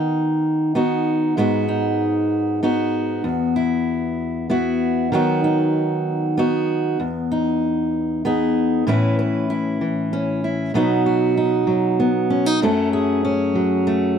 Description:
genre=folk, solo fingerstyle acoustic guitar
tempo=64 BPM (dotted quarters)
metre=6/8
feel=straight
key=E major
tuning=A4 = 440 Hz
part: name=fingerpicked steel-string acoustic guitar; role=solo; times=0.0-14.2 s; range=E2 to B4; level=-18 LUFS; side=equal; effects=none
room=light reverb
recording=dry, close 1970s-style studio recording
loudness=-18 LUFS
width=side -8 dB against mid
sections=0.0-8.9 A section; 8.9-14.2 B section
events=none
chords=0.0 B/D#; 1.4 G#m7; 3.2 Esus2; 5.1 B/D#; 7.0 Emaj7; 8.9 Aadd9; 10.7 B; 12.6 F#m

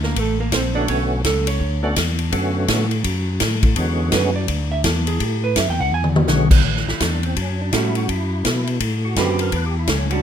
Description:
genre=soul jazz organ trio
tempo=167 BPM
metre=4/4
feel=swing 63% on 8ths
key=A mixolydian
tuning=A4 = 441 Hz
part: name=vintage hollow-body jazz guitar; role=accompaniment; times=0.0-2.0, 4.2-10.2 s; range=D3 to G#5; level=-24 LUFS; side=right 6 dB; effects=none
part: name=tonewheel organ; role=bass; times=0.0-10.2 s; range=A1 to B2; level=-21 LUFS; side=equal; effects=chorus vibrato, slow rotary speaker
part: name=swinging big-band drum kit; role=drums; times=0.0-10.2 s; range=crash cymbal, hi-hat, kick drum, ride cymbal, snare drum, toms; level=-21 LUFS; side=left 1 dB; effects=none
part: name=percussive tonewheel organ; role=melody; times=0.8-10.2 s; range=D3 to B4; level=-26 LUFS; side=equal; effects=overdrive, chorus vibrato, slow rotary speaker
room=little or no reverb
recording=rough home demo mix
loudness=-17 LUFS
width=side -9 dB against mid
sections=0.0-6.6 A section; 6.6-10.2 A section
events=hollow-body jazz guitar solo 0.0-6.6; drum fill 5.9-6.3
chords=0.0 F#aug; 0.9 Bm7; 3.8 E13; 5.2 A6; 5.9 E13; 6.6 A6; 8.1 D13; 9.5 A6 (rootless)

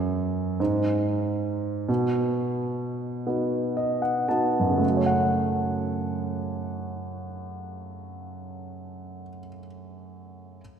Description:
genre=folk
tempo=36-49 BPM (dotted quarters)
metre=6/8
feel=straight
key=F# dorian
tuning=A4 = 438 Hz
part: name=warm grand piano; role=accompaniment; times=0.0-10.6 s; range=F#2 to A5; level=-25 LUFS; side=right 1 dB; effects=none
room=wet lush hall reverb, RT60 2.4 s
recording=rough home demo mix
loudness=-24 LUFS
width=side -8 dB against mid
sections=0.0-4.8 A section; 4.8-8.1 B section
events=slowing down 0.0-4.8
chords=0.0 N.C.; 1.9 B; 4.8 F#m

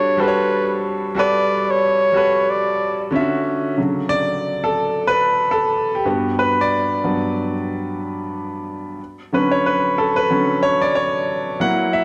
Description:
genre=R&B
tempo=92 BPM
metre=4/4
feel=swing 56% on 16ths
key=D major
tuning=A4 = 440 Hz
part: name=warm flugelhorn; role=melody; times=0.0-3.1 s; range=B4 to D5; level=-20 LUFS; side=equal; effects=none
part: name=clear grand piano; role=accompaniment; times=0.0-12.0 s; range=G2 to F#5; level=-20 LUFS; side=equal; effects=none
room=wet plate reverb, RT60 2.5 s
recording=dreamy mix soaked in reverb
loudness=-19 LUFS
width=mono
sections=0.0-3.8 A section; 3.8-12.0 B section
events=grand piano solo 3.8-12.0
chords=0.0 Gmaj9; 3.1 Dmaj9; 3.8 Dmaj7; 6.1 Gmaj7; 9.0 Dmaj7

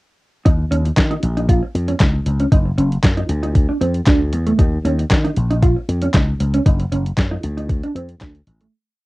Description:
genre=early-eighties boogie funk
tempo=116 BPM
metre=4/4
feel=straight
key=unclear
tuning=A4 = 439 Hz
part: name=mellow electric guitar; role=riff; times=0.5-8.7 s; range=A3 to F4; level=-21 LUFS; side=right 2 dB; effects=wide subtle chorus, cassette tape
part: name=slap bass with an envelope filter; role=bass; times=0.5-8.7 s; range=Gb1 to Eb3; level=-19 LUFS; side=equal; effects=none
part: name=crisp 8-bit digital drum machine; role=drums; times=0.5-8.7 s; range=handclaps, hi-hat, kick drum, snare drum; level=-16 LUFS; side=equal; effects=none
room=light reverb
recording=home recording on cassette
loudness=-15 LUFS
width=side -20 dB against mid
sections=0.5-8.7 breakdown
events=fade-out 6.7-8.7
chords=0.5 Dbsus2/Eb; 1.2 Bbm; 2.5 Gb5; 3.3 Dmadd9; 4.6 Dbsus2/Eb; 5.4 Bbm; 6.7 Gb5; 7.4 Dm

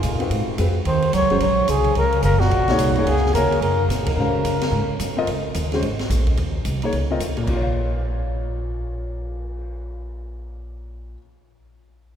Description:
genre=modal jazz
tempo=217 BPM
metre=4/4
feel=swing 61% on 8ths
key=unclear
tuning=A4 = 443 Hz
part: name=breathy trumpet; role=melody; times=0.0-5.0 s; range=Gb4 to Db5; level=-22 LUFS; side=left 2 dB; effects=none
part: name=warm bass clarinet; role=second line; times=0.0-5.0 s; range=Bb2 to Gb3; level=-26 LUFS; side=right 4 dB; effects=none
part: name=upright bass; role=bass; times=0.0-11.1 s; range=Gb1 to Bb2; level=-23 LUFS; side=equal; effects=none
part: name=open jazz drum kit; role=drums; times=0.0-9.6 s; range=crash cymbal, cymbal swell, hi-hat, kick drum, ride cymbal, snare drum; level=-30 LUFS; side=right 1 dB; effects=none
part: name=warm grand piano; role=accompaniment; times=0.2-11.3 s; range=Bb2 to F5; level=-26 LUFS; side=left 1 dB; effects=none
room=wet church reverb, RT60 3.7 s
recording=recorded in a church or concert hall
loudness=-18 LUFS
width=side -9 dB against mid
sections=0.0-5.3 A section; 5.3-7.5 B section; 7.5-9.7 C section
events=band accent 4.0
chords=0.0 Bb7sus2; 0.9 Ab9sus4; 5.3 Absus4; 7.5 Bbm

